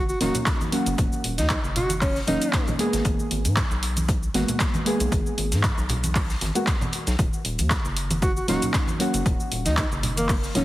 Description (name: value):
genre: deep house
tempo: 116 BPM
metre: 4/4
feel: swing 54% on 16ths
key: G# minor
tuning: A4 = 440 Hz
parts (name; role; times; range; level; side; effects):
- mellow alto saxophone; melody; 0.0-2.7, 8.2-10.6 s; A#3 to F#4; -28 LUFS; equal; digital delay
- rubbery square bass; bass; 0.0-10.6 s; D#1 to G#2; -27 LUFS; equal; sidechain pumping
- deep house drum kit; drums; 0.1-10.6 s; handclaps, hi-hat, shaker; -28 LUFS; equal; overdrive, studio ambience
- deep mellow chord stab; stabs; 0.2-10.6 s; F#3 to G#4; -27 LUFS; equal; wide subtle chorus, sidechain pumping, dub echo
- compact cocktail drum kit; drums; 0.2-10.6 s; hi-hat, snare drum; -38 LUFS; left 3 dB; high-pass filter on hats, studio ambience, high-pass filter on snare, high-pass filter on room
- congas; percussion; 0.2-10.6 s; none; -32 LUFS; right 1 dB; none
- electronic kick drum; drums; 0.5-10.4 s; none; -24 LUFS; equal; overdrive, studio ambience
room: light reverb, small room reverb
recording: heavily compressed radio sound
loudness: -21 LUFS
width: side -16 dB against mid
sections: 0.0-10.6 A section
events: none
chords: 0.0 D#m7; 2.8 G#m9; 7.2 D#m7